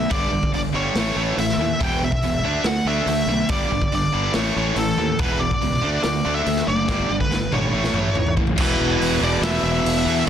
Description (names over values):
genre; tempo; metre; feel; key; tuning
hard rock; 142 BPM; 4/4; straight; E dorian; A4 = 440 Hz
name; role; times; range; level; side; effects
bluesy overdriven lead guitar; melody; 0.0-10.3 s; A4 to G5; -24 LUFS; left 1 dB; distortion
tight distorted guitar; riff; 0.0-10.3 s; E2 to D4; -27 LUFS; left 11 dB; distortion
tight distorted guitar; riff; 0.0-10.3 s; E2 to D4; -25 LUFS; right 10 dB; distortion
fuzz fingered electric bass; bass; 0.0-10.3 s; E1 to E2; -25 LUFS; equal; overdrive
raw garage drum kit; drums; 0.1-10.3 s; crash cymbal, hi-hat, kick drum, snare drum, toms; -25 LUFS; equal; none
distorted electric guitar; riff; 8.6-10.3 s; E2 to E3; -26 LUFS; equal; distortion
room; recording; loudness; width
light reverb; dense, heavily limited modern master; -18 LUFS; side -9 dB against mid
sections
0.0-8.6 A section; 8.6-10.3 B section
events
drum fill 6.9-8.6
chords
0.1 G5; 1.0 A; 1.8 E5; 2.4 D5; 3.5 G5; 4.3 A5; 5.2 E5; 5.8 D; 6.9 G5; 7.7 A; 8.6 E5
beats
| 0.10 0.53 0.95 1.38 | 1.80 2.23 2.65 3.07 | 3.50 3.92 4.35 4.77 | 5.20 5.62 6.04 6.47 | 6.89 7.32 7.74 8.16 | 8.58 9.01 9.43 9.85 | 10.28